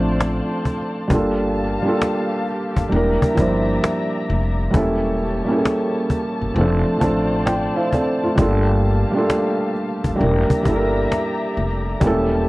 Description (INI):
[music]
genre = lo-fi hip hop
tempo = 66 BPM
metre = 4/4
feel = swing 66% on 16ths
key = unclear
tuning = A4 = 440 Hz
[part]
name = felt-muted upright piano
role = accompaniment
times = 0.0-12.5 s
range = F3 to A5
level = -19 LUFS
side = right 1 dB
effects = cassette tape, low-pass filter
[part]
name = muted studio string section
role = sustained chords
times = 0.0-12.5 s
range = Bb3 to Bb5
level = -28 LUFS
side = left 2 dB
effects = low-pass filter
[part]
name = upright bass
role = bass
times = 0.0-12.5 s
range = E1 to A1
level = -22 LUFS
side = equal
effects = tube saturation
[part]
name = cajon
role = drums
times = 0.0-12.5 s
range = none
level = -21 LUFS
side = equal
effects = none
[sound]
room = moderate studio reverb, RT60 0.6 s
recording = worn, warbling old tape, cassette tape, warbly pitch drift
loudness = -17 LUFS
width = side -20 dB against mid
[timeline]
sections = 0.0-12.5 A section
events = felt piano fill 6.6-8.4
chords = 0.0 Dm7; 1.1 Gm9; 2.9 Em7b5; 4.7 A7b9/E; 6.6 Dm7/F; 8.4 Gm9; 10.2 Em7b5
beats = 0.19 | 1.10 2.01 2.92 3.83 | 4.74 5.65 6.56 7.47 | 8.38 9.29 10.19 11.10 | 12.01